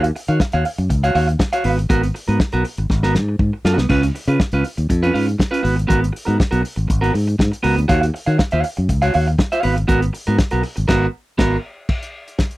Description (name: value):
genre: disco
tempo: 120 BPM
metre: 4/4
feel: straight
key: G# dorian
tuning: A4 = 439 Hz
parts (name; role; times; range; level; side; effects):
- clean electric guitar; accompaniment; 0.0-11.6 s; B3 to E#5; -19 LUFS; right 2 dB; none
- fingered electric bass; bass; 0.0-11.6 s; G#1 to D#3; -18 LUFS; equal; none
- warm soul drum kit; drums; 0.0-12.6 s; crash cymbal, hi-hat, kick drum, snare drum, splash cymbal; -20 LUFS; equal; none
room: little or no reverb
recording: dry, close 1970s-style studio recording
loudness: -16 LUFS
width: side -18 dB against mid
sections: 0.0-11.9 A section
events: drum fill 2.9-3.9; band accent 10.9-11.9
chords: 0.0 D#m9; 1.6 G#m9; 3.9 C#7; 5.6 G#m9; 7.9 D#m9; 9.6 G#m9; 11.9 N.C.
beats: 0.40 0.90 1.40 | 1.90 2.40 2.90 3.40 | 3.90 4.40 4.90 5.40 | 5.90 6.40 6.89 7.39 | 7.89 8.39 8.89 9.39 | 9.89 10.39 10.89 11.39 | 11.89 12.39